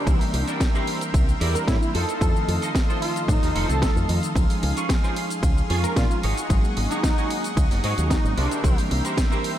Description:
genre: nu-disco, nu disco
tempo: 112 BPM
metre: 4/4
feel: straight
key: unclear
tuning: A4 = 440 Hz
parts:
  - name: wide unison lead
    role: melody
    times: 0.0-8.8 s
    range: D4 to Bb4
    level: -30 LUFS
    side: equal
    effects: cassette tape, analog delay
  - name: lush unison pad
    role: sustained chords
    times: 0.0-9.6 s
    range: Ab4 to Db6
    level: -32 LUFS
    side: left 1 dB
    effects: chorus, sidechain pumping
  - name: semi-hollow electric guitar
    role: riff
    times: 0.0-9.6 s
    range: Db4 to Eb5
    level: -31 LUFS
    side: right 2 dB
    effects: ensemble chorus, analog delay
  - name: mellow tine electric piano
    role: accompaniment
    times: 0.1-9.6 s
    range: Eb3 to Eb4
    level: -31 LUFS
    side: equal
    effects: phaser, sidechain pumping, analog delay
  - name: fingered electric bass with an envelope filter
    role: bass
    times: 0.1-9.0 s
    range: F1 to Bb2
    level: -24 LUFS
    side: equal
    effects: none
  - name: electronic kick drum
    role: drums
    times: 0.1-9.3 s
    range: none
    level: -22 LUFS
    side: equal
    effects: overdrive
  - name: house drum kit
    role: drums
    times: 0.1-9.6 s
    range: hi-hat, ride cymbal, shaker, snare drum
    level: -31 LUFS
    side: equal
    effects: overdrive
room: light reverb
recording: none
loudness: -20 LUFS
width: side -12 dB against mid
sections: 0.0-9.6 A section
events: none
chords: 0.0 C7; 1.9 F7; 4.4 Dbmaj7; 6.2 Ab7sus4; 8.4 C7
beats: | 0.07 0.61 1.14 1.68 | 2.21 2.75 3.29 3.82 | 4.36 4.89 5.43 5.96 | 6.50 7.04 7.57 8.11 | 8.64 9.18

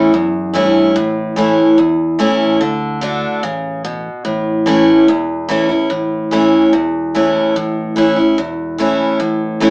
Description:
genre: honky-tonk and classic country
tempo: 146 BPM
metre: 4/4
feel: straight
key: A major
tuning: A4 = 436 Hz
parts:
  - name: picked steel-string acoustic guitar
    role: accompaniment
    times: 0.0-9.7 s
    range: E2 to F#4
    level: -15 LUFS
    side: equal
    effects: none
  - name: fingered electric bass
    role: bass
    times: 0.0-9.7 s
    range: E1 to G2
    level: -29 LUFS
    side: equal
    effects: none
room: wet studio reverb, RT60 0.6 s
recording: band playing live in one room, small speaker sound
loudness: -15 LUFS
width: mono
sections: 1.0-9.7 A section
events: none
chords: 0.0 A; 2.6 D; 4.3 A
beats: 0.14 0.56 | 0.97 1.38 1.79 2.20 | 2.62 3.03 3.44 3.85 | 4.26 4.68 5.09 5.50 | 5.91 6.33 6.74 7.15 | 7.56 7.97 8.39 8.80 | 9.21 9.62

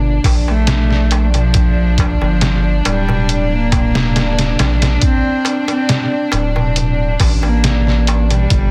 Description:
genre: trip hop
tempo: 69 BPM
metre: 4/4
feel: straight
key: G minor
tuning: A4 = 440 Hz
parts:
  - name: warm studio violin section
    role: sustained chords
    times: 0.0-8.7 s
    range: D4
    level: -24 LUFS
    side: equal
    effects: none
  - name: round analog bass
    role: bass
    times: 0.0-8.7 s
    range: D1 to Bb1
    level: -18 LUFS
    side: equal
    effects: none
  - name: trip hop sampler-style drum kit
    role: drums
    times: 0.2-8.7 s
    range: hi-hat, kick drum, snare drum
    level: -18 LUFS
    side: equal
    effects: none
  - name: darbuka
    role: percussion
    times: 0.3-8.7 s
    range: none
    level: -26 LUFS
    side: equal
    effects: none
  - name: dark cello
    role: melody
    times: 0.5-8.7 s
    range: F3 to C4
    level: -23 LUFS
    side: equal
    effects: dub echo
room: small room ambience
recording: dense, heavily limited modern master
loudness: -15 LUFS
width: mono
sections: 0.0-8.7 A section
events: none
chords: 0.0 Gmadd9 (rootless)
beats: 0.68 | 1.54 2.42 3.29 4.15 | 5.02 5.89 6.76 7.63 | 8.50

